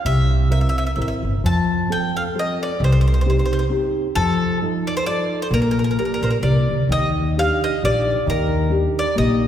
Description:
italian folk, Italian serenade; 132 BPM; 3/4; swing 55% on 8ths, rubato; Bb major; A4 = 440 Hz
bowl-back mandolin; melody; 0.1-9.5 s; A4 to A5; -23 LUFS; equal
nylon-string guitar; accompaniment; 0.1-9.5 s; C3 to D5; -22 LUFS; left 1 dB
upright bass; bass; 0.1-9.5 s; G1 to F2; -20 LUFS; equal
wet concert hall reverb, RT60 2.3 s; heard from further back in the room; -17 LUFS; side -10 dB against mid
0.0-6.9 A section; 6.9-9.5 B section
0.0 C7; 1.4 F; 2.8 Cm; 4.2 F7; 5.5 Bb6; 6.9 Ebmaj7
| 0.04 0.50 0.96 | 1.43 1.90 2.35 | 2.80 3.25 3.71 | 4.16 4.61 5.07 | 5.52 5.98 6.44 | 6.91 7.37 7.82 | 8.27 8.72 9.17

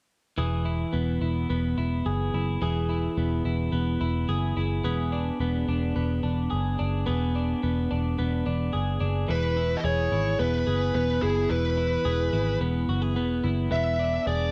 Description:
indie pop; 108 BPM; 4/4; straight; E major; A4 = 440 Hz
twelve-string electric guitar; arpeggios; 0.4-14.5 s; E3 to G#4; -31 LUFS; equal; spring reverb
vintage muted picked electric bass; bass; 0.4-14.5 s; E1 to G#1; -29 LUFS; equal
bluesy overdriven lead guitar; melody; 9.3-14.5 s; G#4 to E5; -29 LUFS; equal; distortion
little or no reverb; dry, close 1970s-style studio recording; -26 LUFS; mono
0.4-9.3 A section; 9.3-14.5 B section
0.4 E; 4.8 E7; 9.3 E; 13.7 E7
| 0.39 0.94 1.50 2.06 | 2.62 3.18 3.73 4.29 | 4.85 5.41 5.96 6.52 | 7.07 7.63 8.18 8.74 | 9.29 9.85 10.40 10.96 | 11.51 12.06 12.62 13.17 | 13.72 14.28

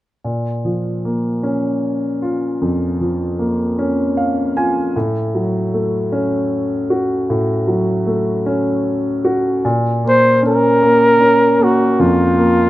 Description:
pop; 51 BPM (dotted quarters); 6/8; straight; A4 = 442 Hz
warm grand piano; accompaniment; 0.2-12.7 s; F2 to Ab5; -16 LUFS; equal
warm flugelhorn; melody; 10.1-12.7 s; F4 to C5; -12 LUFS; equal
moderate plate reverb, RT60 3.0 s; rough home demo mix; -14 LUFS; side -16 dB against mid
0.2-9.6 A section; 9.6-12.7 B section
grand piano fill 3.8-4.9
0.2 Bbm; 4.9 Gbm/A; 9.6 Bbm
| 0.24 1.42 | 2.60 3.78 | 4.95 6.11 | 7.28 8.46 | 9.64 10.82 | 11.99

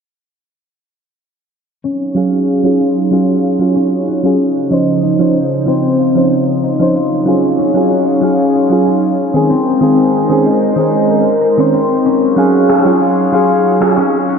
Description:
sunset chillout; 94 BPM; 4/4; swing 53% on 16ths; Eb dorian; A4 = 440 Hz
airy breathy pad; sustained chords; 2.0-14.4 s; Db3 to F5; -17 LUFS; right 2 dB; chorus
concert harp; arpeggios; 1.8-14.4 s; C4 to Bb4; -15 LUFS; left 4 dB; low-pass filter, ping-pong delay, slapback echo
electronic cabasa and rim click; drums; 1.8-14.4 s; -18 LUFS; equal; low-pass filter on perc, low-pass filter on snare, low-pass filter on room
soft electric-piano-like synth keys; accompaniment; 2.1-14.0 s; Eb3 to F5; -14 LUFS; right 1 dB; chorus, auto-pan, low-pass filter, ping-pong delay, slapback echo
wet lush hall reverb, RT60 2.8 s; big arena sound, low-pass filter; -10 LUFS; side -6 dB against mid
1.8-14.4 A section
filter sweep on synth keys 1.8-14.4; filter sweep on harp 1.8-14.4; filter sweep 1.8-14.4
1.8 Ebm11; 4.4 Dbmaj9; 7.0 Ebm11; 9.2 Bbm11; 12.1 Ebm11
| 1.84 2.48 3.12 3.76 | 4.40 5.04 5.67 6.31 | 6.95 7.59 8.23 8.87 | 9.50 10.14 10.78 11.42 | 12.06 12.70 13.33 13.97

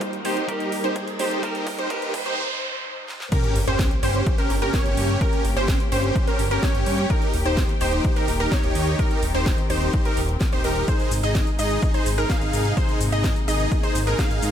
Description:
EDM, festival progressive house; 127 BPM; 4/4; straight; A4 = 439 Hz
clean electric guitar; accompaniment; 0.0-2.4 s; G3 to G4; -32 LUFS; right 3 dB; sidechain pumping, digital delay
muted chamber string section; sustained chords; 0.0-14.5 s; C3 to C5; -33 LUFS; left 3 dB; sidechain pumping
wide unison pluck; arpeggios; 0.0-14.5 s; Bb4 to F5; -29 LUFS; right 1 dB; sidechain pumping, digital delay
supersaw chords; riff; 0.0-14.5 s; Db4 to F5; -26 LUFS; equal; sidechain pumping, digital delay
electronic kick drum; drums; 0.0-14.3 s; -23 LUFS; equal; overdrive, high-pass filter on kick, high-pass filter on room
house drum kit; drums; 0.0-14.5 s; crash cymbal, hi-hat, shaker, snare drum; -32 LUFS; equal; high-pass filter on hats, high-pass filter on snare, high-pass filter on cymbals, high-pass filter on perc
riser, noise sweep and sub drop; sound effects; 0.0-5.2 s; -31 LUFS; right 1 dB
fat analog bass; bass; 3.6-14.5 s; Eb1 to Ab2; -25 LUFS; equal; tube saturation, sidechain pumping
light reverb; high-pass filter; -20 LUFS; side -9 dB against mid
0.0-3.3 A section; 3.3-14.5 B section
build-up 0.0-3.3; drum fill 0.0-2.4, 3.1; riser 0.0-2.4; filter sweep on supersaw synth 0.0-3.3; filter sweep on string section 0.0-3.3; filter sweep 0.0-3.3; noise sweep 1.4-3.3; break 2.4-3.3; drop 3.3-14.5; impact 3.3-5.2
0.0 Eb; 3.3 Gdim; 7.1 Eb; 10.9 Ab
0.01 0.49 0.96 | 1.43 1.90 2.38 2.85 | 3.32 3.79 4.26 4.74 | 5.21 5.68 6.16 6.63 | 7.10 7.57 8.04 8.52 | 8.99 9.46 9.94 10.41 | 10.88 11.35 11.82 12.30 | 12.77 13.24 13.71 14.19

